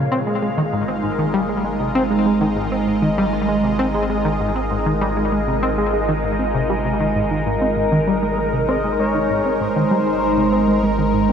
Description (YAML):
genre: ambient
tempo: 98 BPM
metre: 4/4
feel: straight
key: unclear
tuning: A4 = 440 Hz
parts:
  - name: phased analog pad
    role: sustained chords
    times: 0.0-11.3 s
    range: Bb2 to F5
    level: -20 LUFS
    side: right 1 dB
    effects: phaser, chorus, shimmer reverb
  - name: tight sequenced synth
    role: riff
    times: 0.0-11.3 s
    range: Ab2 to C4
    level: -21 LUFS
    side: equal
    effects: chorus, shimmer reverb, ping-pong delay
  - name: warm sub bass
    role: bass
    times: 0.0-11.3 s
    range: Ab1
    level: -28 LUFS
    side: equal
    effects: none
  - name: bubbling stepped-filter texture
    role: texture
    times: 0.0-11.3 s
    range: Eb4 to F5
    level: -33 LUFS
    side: left 1 dB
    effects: chorus, built-in reverb, shimmer reverb
  - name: expressive portamento lead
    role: melody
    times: 7.5-11.3 s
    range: Bb4 to Eb5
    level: -22 LUFS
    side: left 1 dB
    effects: chorus, shimmer reverb, ping-pong delay
room: wet cathedral reverb, RT60 5.2 s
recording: in a vast, echoing space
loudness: -17 LUFS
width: side -7 dB against mid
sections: 0.0-11.3 A section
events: none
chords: 0.1 Absus2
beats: | 0.12 0.73 1.34 1.95 | 2.57 3.18 3.79 4.40 | 5.01 5.63 6.24 6.85 | 7.46 8.08 8.69 9.30 | 9.91 10.53 11.14